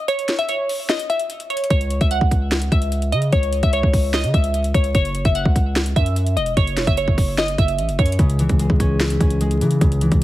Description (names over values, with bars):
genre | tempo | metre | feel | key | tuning
hip hop, trap | 148 BPM | 4/4 | half-time | C# minor | A4 = 440 Hz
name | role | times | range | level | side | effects
glassy wavetable pluck | melody | 0.0-8.1 s | C#5 to F#5 | -22 LUFS | equal | chorus, low-pass filter
trap drum kit | drums | 0.1-10.2 s | hi-hat, kick drum, snare drum | -19 LUFS | equal | none
distorted 808-style bass | bass | 1.7-10.2 s | E1 to C#3 | -21 LUFS | equal | distortion
concert harp | accompaniment | 8.2-10.2 s | C#3 to E4 | -19 LUFS | left 1 dB | low-pass filter
room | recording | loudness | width
digital ambience | heavily compressed radio sound, vinyl crackle | -16 LUFS | side -15 dB against mid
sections
0.0-10.2 A section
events
break 0.0-1.7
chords
0.0 N.C.; 1.7 C#m; 4.9 F#7(no3); 8.2 C#m